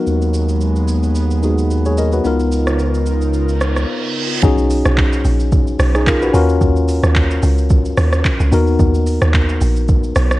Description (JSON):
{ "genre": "amapiano", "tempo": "110 BPM", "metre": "4/4", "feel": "swing 55% on 16ths", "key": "unclear", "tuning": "A4 = 440 Hz", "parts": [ { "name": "tine electric piano", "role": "accompaniment", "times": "0.0-10.4 s", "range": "Cb4 to Eb5", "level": "-19 LUFS", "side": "left 3 dB", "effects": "auto-pan" }, { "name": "airy breathy pad", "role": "sustained chords", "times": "0.0-4.4 s", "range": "Db3 to Bb4", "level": "-24 LUFS", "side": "right 1 dB", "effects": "chorus, sidechain pumping" }, { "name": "downlifter and reverse cymbal", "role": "sound effects", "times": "3.6-4.4 s", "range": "none", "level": "-26 LUFS", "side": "right 5 dB", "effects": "none" }, { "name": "saturated sub bass", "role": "bass", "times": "0.1-3.9 s", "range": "Db2 to Eb2", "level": "-17 LUFS", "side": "equal", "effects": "none" }, { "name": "smooth R&B drum kit", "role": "drums", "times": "0.1-10.4 s", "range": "handclaps, hi-hat, kick drum, rim click, shaker", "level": "-18 LUFS", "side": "equal", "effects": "vintage 12-bit sampler grit" }, { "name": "deep log drum bass", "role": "bass", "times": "4.4-10.4 s", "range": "Bb1 to Eb2", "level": "-15 LUFS", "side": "equal", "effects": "none" } ], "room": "digital ambience", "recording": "worn, warbling old tape, cassette tape, warbly pitch drift", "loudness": "-13 LUFS", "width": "side -17 dB against mid", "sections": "0.0-4.4 A section; 4.4-10.4 B section", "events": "reverse cymbal 3.6-4.4; break 3.9-4.4; drop 4.4-10.4", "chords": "0.0 Abm9/Eb; 2.2 Db13; 4.4 B6; 6.3 Ebm9; 8.5 Bmaj7", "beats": "| 0.07 0.61 1.16 1.71 | 2.25 2.80 3.34 3.89 | 4.43 4.98 5.52 6.07 | 6.61 7.16 7.71 8.25 | 8.80 9.34 9.89" }